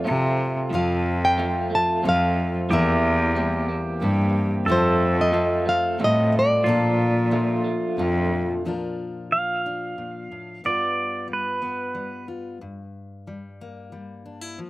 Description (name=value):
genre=acoustic folk-pop ballad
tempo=91 BPM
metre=3/4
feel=straight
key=Bb major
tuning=A4 = 443 Hz
part: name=flamenco guitar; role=melody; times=0.0-8.0 s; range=C5 to A5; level=-23 LUFS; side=equal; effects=slapback echo
part: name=pedal steel guitar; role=second line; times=0.0-12.3 s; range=F4 to F5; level=-28 LUFS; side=right 2 dB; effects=slapback echo
part: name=fingerpicked steel-string acoustic guitar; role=accompaniment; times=0.0-14.7 s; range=G2 to B4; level=-30 LUFS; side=left 3 dB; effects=none
part: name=electric guitar through a small old amp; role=arpeggios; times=0.0-8.7 s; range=E3 to G4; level=-29 LUFS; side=right 3 dB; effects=tremolo
part: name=rich cello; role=bass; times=0.1-8.5 s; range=E2 to C3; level=-22 LUFS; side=equal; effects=none
room=little or no reverb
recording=recorded outdoors, with no room sound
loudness=-20 LUFS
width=side -18 dB against mid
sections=0.0-8.6 A section; 8.6-14.7 B section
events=pedal steel guitar solo 8.6-14.7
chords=0.0 F; 2.7 C7/E; 4.7 F; 6.6 Bbmaj7; 8.6 Bb; 10.6 G7; 12.6 Gm